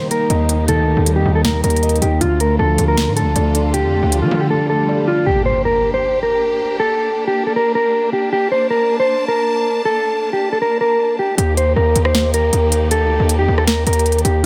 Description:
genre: hip hop, trap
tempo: 157 BPM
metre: 4/4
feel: half-time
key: G minor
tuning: A4 = 440 Hz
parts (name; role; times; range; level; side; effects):
- mellow electric guitar; melody; 0.0-14.5 s; F4 to C5; -19 LUFS; equal; none
- felt-muted upright piano; accompaniment; 0.0-5.3 s; D3 to Eb5; -22 LUFS; equal; none
- warm symphonic string section; sustained chords; 0.0-14.4 s; D3 to A5; -28 LUFS; equal; none
- trap drum kit; drums; 0.1-4.2, 11.4-14.3 s; hi-hat, rim click, snare drum; -22 LUFS; equal; none
- distorted 808-style bass; bass; 0.3-4.5, 11.4-14.4 s; D2 to F3; -19 LUFS; equal; distortion
- swell and impact; sound effects; 4.6-6.8 s; none; -27 LUFS; equal; none
room: light reverb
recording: none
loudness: -16 LUFS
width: mono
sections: 0.0-5.3 A section; 5.3-14.5 B section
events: swell 4.6-5.3; impact 5.3-6.8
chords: 0.0 Eb; 2.2 Dm; 5.3 Gm; 11.4 Eb

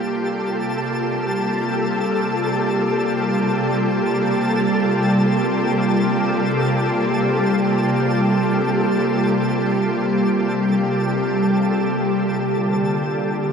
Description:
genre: ambient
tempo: free time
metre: none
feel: none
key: unclear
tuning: A4 = 440 Hz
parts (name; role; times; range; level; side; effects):
- soft additive organ-like pad; sustained chords; 0.0-13.5 s; C3 to G4; -19 LUFS; equal; ensemble chorus, built-in reverb
- bowed-like drone; drone; 0.0-13.5 s; Bb3 to G4; -24 LUFS; right 1 dB; built-in reverb
- twinkling granular texture; texture; 0.0-12.5 s; A4 to A5; -25 LUFS; left 2 dB; built-in reverb
- concert harp; arpeggios; 12.8-13.5 s; G4; -37 LUFS; left 4 dB; none
room: wet huge ambient reverb, RT60 8.6 s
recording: in a vast, echoing space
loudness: -17 LUFS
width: side -6 dB against mid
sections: 0.0-12.4 A section; 12.4-13.5 A section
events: none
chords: 0.0 Fsus2; 12.4 Bb6

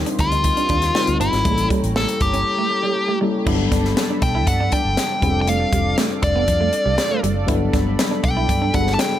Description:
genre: polished 1980s jazz-funk pop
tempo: 119 BPM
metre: 4/4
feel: straight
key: G major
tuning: A4 = 440 Hz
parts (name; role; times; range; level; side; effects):
- tine electric piano; accompaniment; 0.0-9.2 s; F#3 to Bb4; -23 LUFS; left 3 dB; overdrive, lush chorus
- chorused pulse-width pad; sustained chords; 0.0-9.2 s; G4 to D6; -30 LUFS; right 2 dB; none
- vintage muted fingered electric bass; bass; 0.0-8.9 s; F1 to G2; -23 LUFS; right 1 dB; none
- semi-hollow electric guitar; riff; 0.1-8.8 s; G3 to E4; -27 LUFS; right 5 dB; lush chorus
- crisp fusion drum kit; drums; 0.1-9.1 s; crash cymbal, hi-hat, kick drum, snare drum; -22 LUFS; equal; none
- nasal lead guitar with a parked wah; melody; 0.2-9.2 s; E4 to A5; -22 LUFS; left 1 dB; overdrive, digital delay
room: light reverb, small room ambience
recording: none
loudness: -16 LUFS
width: side -12 dB against mid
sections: 0.0-3.5 A section; 3.5-9.2 B section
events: none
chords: 0.0 Eb69; 1.5 A7b9; 3.5 Gmaj9; 5.2 F69; 7.5 Gmaj9

